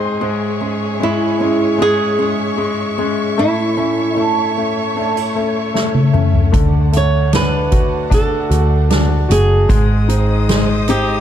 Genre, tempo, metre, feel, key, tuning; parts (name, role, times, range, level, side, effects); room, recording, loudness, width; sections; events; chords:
pop ballad; 76 BPM; 4/4; straight; A4 = 442 Hz
clear concert grand piano; accompaniment; 0.0-11.2 s; D3 to B#5; -20 LUFS; left 4 dB
warm studio string section; sustained chords; 0.0-11.2 s; A3 to D#6; -25 LUFS; left 1 dB
fingerpicked acoustic archtop guitar; arpeggios; 0.0-11.2 s; G#2 to A4; -24 LUFS; right 8 dB
flamenco guitar; melody; 1.0-11.2 s; E4 to C#5; -18 LUFS; right 2 dB
soft-mallet drum kit; drums; 5.8-11.1 s; hi-hat, kick drum, snare drum, toms; -16 LUFS; equal
vintage muted fingered electric bass; bass; 6.5-11.2 s; F#1 to D2; -16 LUFS; equal
light reverb, small room ambience; dark, warm production; -13 LUFS; side -10 dB against mid
0.0-11.2 A section
grand piano fill 0.0; drum fill 5.7-6.5
0.2 C#m/G#; 3.4 A; 6.5 D; 9.7 G#